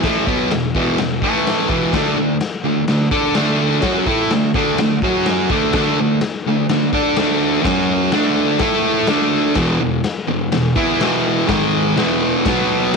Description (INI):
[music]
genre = garage rock duo or trio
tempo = 126 BPM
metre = 4/4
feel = straight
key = unclear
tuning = A4 = 440 Hz
[part]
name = fuzz guitar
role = riff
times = 0.0-12.9 s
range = E2 to D5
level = -15 LUFS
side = right 1 dB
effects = distortion
[part]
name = raw garage drum kit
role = drums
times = 0.0-13.0 s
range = crash cymbal, kick drum, snare drum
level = -22 LUFS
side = left 3 dB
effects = none
[sound]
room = light reverb, small room ambience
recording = 1960s-style stereo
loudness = -14 LUFS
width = side -4 dB against mid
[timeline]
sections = 0.0-13.0 A section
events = none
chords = 0.0 E5; 1.2 A5; 1.7 E5; 1.9 D5; 5.0 F#5; 5.5 D5; 7.7 F#5; 8.1 D5; 8.6 A5; 9.1 D5; 9.6 E5; 11.5 G#5; 12.0 E5; 12.5 B5